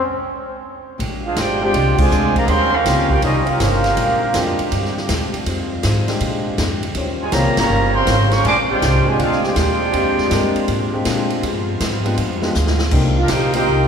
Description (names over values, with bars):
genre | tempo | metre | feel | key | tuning
jazz, big band swing | 161 BPM | 4/4 | swing 66% on 8ths | Bb major | A4 = 440 Hz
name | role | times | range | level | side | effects
picked old ladder-braced acoustic guitar | accompaniment | 1.0-13.9 s | Bb2 to C5 | -27 LUFS | left 3 dB | none
warm trombone section | sustained chords | 1.0-13.9 s | Db3 to C5 | -28 LUFS | left 2 dB | none
upright bass | bass | 1.0-13.9 s | G1 to Bb2 | -21 LUFS | equal | none
swinging big-band drum kit | drums | 1.0-13.8 s | crash cymbal, hi-hat, kick drum, ride cymbal, snare drum | -23 LUFS | equal | none
bright trombone section | second line | 1.2-5.0, 7.2-10.9, 13.2-13.9 s | Db3 to G4 | -22 LUFS | right 2 dB | none
mellow trumpet section | melody | 1.3-5.0, 7.2-10.9, 13.2-13.9 s | Db4 to D6 | -20 LUFS | right 2 dB | none
clear concert grand piano | accompaniment | 1.6-13.7 s | Ab3 to Bb4 | -25 LUFS | left 2 dB | none
room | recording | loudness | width
wet church reverb, RT60 3.3 s | recorded in a church or concert hall | -15 LUFS | side -7 dB against mid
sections
1.0-13.9 A section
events
stop 0.0-1.0; band accent 1.9, 7.5; drum fill 12.5-12.9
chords
0.0 N.C.; 1.0 Bb13; 2.5 Eb13; 4.0 Bb13; 5.5 Fm7; 6.2 Bb13; 7.0 Eb13; 8.4 Bb13; 11.4 G7b9; 12.9 Cm7